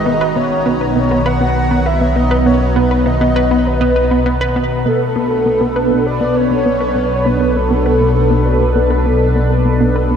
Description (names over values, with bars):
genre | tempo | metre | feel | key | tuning
ambient, sequencer-driven space music | 100 BPM | 4/4 | straight | B minor from 4.9 s | A4 = 443 Hz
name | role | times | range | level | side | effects
breathy flute-like synth lead | melody | 0.0-9.4 s | A4 to F#5 | -18 LUFS | equal | ensemble chorus, tape echo
phased analog pad | sustained chords | 0.0-10.2 s | B2 to A#5 | -16 LUFS | equal | phaser, chorus
analog drone | bass | 0.0-10.2 s | B1 | -18 LUFS | equal | chorus, phaser
analog pluck | riff | 0.1-10.2 s | B3 to B4 | -19 LUFS | equal | chorus, tape echo
room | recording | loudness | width
wet huge ambient reverb, RT60 7.8 s | dark, warm production | -12 LUFS | side -7 dB against mid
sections
0.0-4.9 A section; 4.9-10.2 B section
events
filter sweep on synth arpeggio sound 0.0-4.9, 4.9-10.2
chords
0.1 Bmaj7; 4.9 Bm7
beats
| 0.06 0.66 1.26 1.86 | 2.46 3.06 3.66 4.26 | 4.86 5.46 6.06 6.66 | 7.26 7.86 8.46 9.06 | 9.66